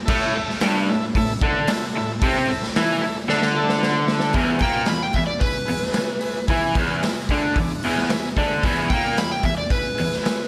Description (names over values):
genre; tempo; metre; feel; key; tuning
garage rock duo or trio; 112 BPM; 4/4; straight; E mixolydian; A4 = 440 Hz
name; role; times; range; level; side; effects
combo organ; sustained chords; 0.1-10.4 s; E4 to A5; -33 LUFS; equal; none
raw garage guitar; riff; 0.1-10.3 s; E2 to E4; -24 LUFS; equal; overdrive, spring reverb
raw garage drum kit; drums; 0.1-10.4 s; crash cymbal, hi-hat, kick drum, snare drum; -26 LUFS; equal; none
overdriven slide guitar; melody; 4.6-10.5 s; B4 to B5; -27 LUFS; equal; none
room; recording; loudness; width
light reverb; none; -21 LUFS; mono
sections
0.0-4.3 A section; 4.3-10.5 B section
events
drum fill 3.3-4.3; transistor combo organ fill 3.3-4.3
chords
0.0 A5; 4.3 E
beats
| 0.09 0.62 1.15 1.68 | 2.21 2.75 3.28 3.81 | 4.35 4.88 5.42 5.95 | 6.49 7.02 7.56 8.09 | 8.63 9.16 9.70 10.24